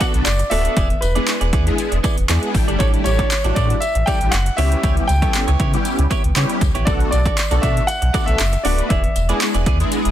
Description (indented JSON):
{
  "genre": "dance-pop",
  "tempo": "118 BPM",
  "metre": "4/4",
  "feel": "straight",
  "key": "B minor",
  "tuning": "A4 = 440 Hz",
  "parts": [
    { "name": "warm baby grand piano", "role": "melody", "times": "0.0-9.4 s", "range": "B4 to G5", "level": "-23 LUFS", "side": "equal", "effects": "ping-pong delay" },
    { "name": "big bright polysynth", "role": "accompaniment", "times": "0.0-10.1 s", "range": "G3 to B4", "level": "-24 LUFS", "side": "left 1 dB", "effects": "ensemble chorus, sidechain pumping" },
    { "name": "direct-recorded clean electric guitar", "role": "riff", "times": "0.0-10.1 s", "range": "B3 to D5", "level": "-27 LUFS", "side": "right 6 dB", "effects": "wide subtle chorus" },
    { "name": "house drum kit", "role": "drums", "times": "0.0-10.1 s", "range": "handclaps, hi-hat, kick drum", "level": "-20 LUFS", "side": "equal", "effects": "overdrive" },
    { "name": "tambourine", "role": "percussion", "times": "0.0-10.0 s", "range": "none", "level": "-35 LUFS", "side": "left 13 dB", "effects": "none" },
    { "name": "impact", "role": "sound effects", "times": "0.0-0.8 s", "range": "none", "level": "barely audible", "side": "none", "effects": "none" },
    { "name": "sub bass with octave", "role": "bass", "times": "0.1-10.1 s", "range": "D1 to C#3", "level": "-18 LUFS", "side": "equal", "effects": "sidechain pumping" }
  ],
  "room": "little or no reverb",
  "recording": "dense, heavily limited modern master",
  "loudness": "-15 LUFS",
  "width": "side -12 dB against mid",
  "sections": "0.0-10.1 A section",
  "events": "impact 0.0-0.8",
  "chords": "0.0 Bm7; 0.8 E7; 2.5 A7sus4; 4.6 C#m7b5; 6.9 Bm7; 8.9 E7"
}